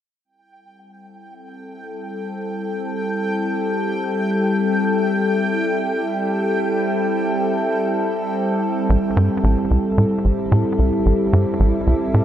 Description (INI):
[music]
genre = ambient, sequencer-driven space music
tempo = 111 BPM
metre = 4/4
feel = straight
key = A minor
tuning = A4 = 441 Hz
[part]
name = evolving wavetable pad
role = sustained chords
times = 1.6-12.2 s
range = G3 to A4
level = -20 LUFS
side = left 1 dB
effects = chorus, built-in reverb
[part]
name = bubbling stepped-filter texture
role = texture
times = 0.2-8.9 s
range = G5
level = -28 LUFS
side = right 2 dB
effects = chorus, built-in reverb
[part]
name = tight sequencer bass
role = riff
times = 8.9-12.2 s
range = A1 to A2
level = -18 LUFS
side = equal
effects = tape echo
[sound]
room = wet lush hall reverb, RT60 2.5 s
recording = none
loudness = -17 LUFS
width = side -10 dB against mid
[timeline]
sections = 0.2-8.9 A section; 8.9-12.2 B section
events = fade-in on synth texture 0.2-8.9; filter sweep on ambient pad 0.2-8.9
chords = 0.2 Am7